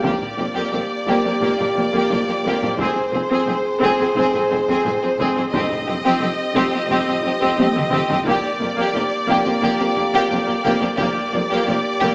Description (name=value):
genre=cinematic, epic orchestral film score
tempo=88 BPM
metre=4/4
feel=straight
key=unclear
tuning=A4 = 440 Hz
part: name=clear symphonic violin section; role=melody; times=0.0-12.1 s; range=C5 to Eb5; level=-26 LUFS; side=equal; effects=none
part: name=rich symphonic violin section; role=second line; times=0.0-12.1 s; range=G4 to Ab4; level=-26 LUFS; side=equal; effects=none
part: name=warm symphonic viola section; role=accompaniment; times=0.0-12.1 s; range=Bb3 to C4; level=-26 LUFS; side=equal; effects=none
part: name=warm French horn section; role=sustained chords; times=0.0-12.1 s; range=Bb3 to Ab4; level=-27 LUFS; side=equal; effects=none
part: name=bright symphonic double bass section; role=bass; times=0.0-12.1 s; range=F1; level=-33 LUFS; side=equal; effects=none
part: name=warm symphonic cello section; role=bass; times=0.0-12.1 s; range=F2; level=-30 LUFS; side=equal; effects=none
part: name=taiko ensemble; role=drums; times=0.0-12.1 s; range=none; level=-29 LUFS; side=equal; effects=none
part: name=timpani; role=percussion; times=5.5-6.5 s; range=F2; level=-36 LUFS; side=equal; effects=none
room=moderate scoring stage reverb, RT60 1.9 s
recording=small speaker sound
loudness=-19 LUFS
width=mono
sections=0.0-12.1 A section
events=drum fill 7.6-8.3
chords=0.0 Gm/F; 2.8 Fm; 5.5 Cm/F; 8.3 Gm/F